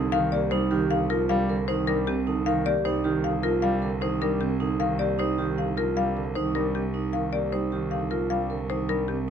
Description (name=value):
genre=classical, minimalist pattern music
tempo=154 BPM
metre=6/4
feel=straight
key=C minor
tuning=A4 = 440 Hz
part: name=warm grand piano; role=accompaniment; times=0.0-9.3 s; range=C3 to Bb3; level=-31 LUFS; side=right 1 dB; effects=none
part: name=vibraphone with soft mallets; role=arpeggios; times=0.0-9.3 s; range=C4 to Bb4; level=-28 LUFS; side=right 8 dB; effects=none
part: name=rich cello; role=bass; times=0.0-9.3 s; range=C2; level=-29 LUFS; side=right 2 dB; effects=none
part: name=marimba with medium hard mallets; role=melody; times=0.1-9.3 s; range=G4 to F5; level=-28 LUFS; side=left 10 dB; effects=none
room=light reverb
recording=dark, warm production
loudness=-23 LUFS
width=side -8 dB against mid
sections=0.0-9.3 A section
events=none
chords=0.0 Cm9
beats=0.12 0.51 0.90 | 1.29 1.68 2.07 2.46 2.85 3.24 | 3.63 4.02 4.41 4.80 5.19 5.58 | 5.97 6.36 6.75 7.14 7.53 7.92 | 8.31 8.70 9.09